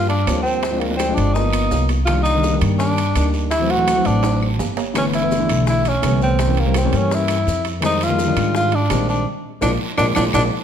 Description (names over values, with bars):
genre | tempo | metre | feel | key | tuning
Afro-Cuban jazz | 167 BPM | 4/4 | straight | unclear | A4 = 440 Hz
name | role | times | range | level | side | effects
breathy tenor saxophone | melody | 0.0-10.4 s | Bb3 to F#4 | -20 LUFS | equal | none
dark concert grand piano | accompaniment | 0.0-10.5 s | D3 to D#4 | -22 LUFS | left 3 dB | none
upright bass | bass | 0.0-10.5 s | G1 to Ab2 | -20 LUFS | right 1 dB | none
bongos | percussion | 0.1-10.4 s | none | -32 LUFS | left 5 dB | none
timbales | percussion | 0.1-10.4 s | none | -29 LUFS | right 8 dB | none
claves | percussion | 0.3-10.4 s | none | -34 LUFS | left 4 dB | none
guiro | percussion | 0.3-10.4 s | none | -34 LUFS | right 5 dB | none
maracas | percussion | 0.3-10.4 s | none | -36 LUFS | left 3 dB | none
room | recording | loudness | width
moderate large studio reverb, RT60 1.3 s | none | -16 LUFS | side -8 dB against mid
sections
0.0-10.6 A section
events
drum fill 4.2-5.0, 9.6-10.6; band accent 9.3-10.6; grand piano fill 10.0-10.6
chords
0.0 Gm7; 0.6 Dm7b5; 1.4 G7alt; 2.1 Cm9; 3.5 D9; 5.0 G69; 6.4 C7b9; 7.8 Fm9; 9.3 Bb7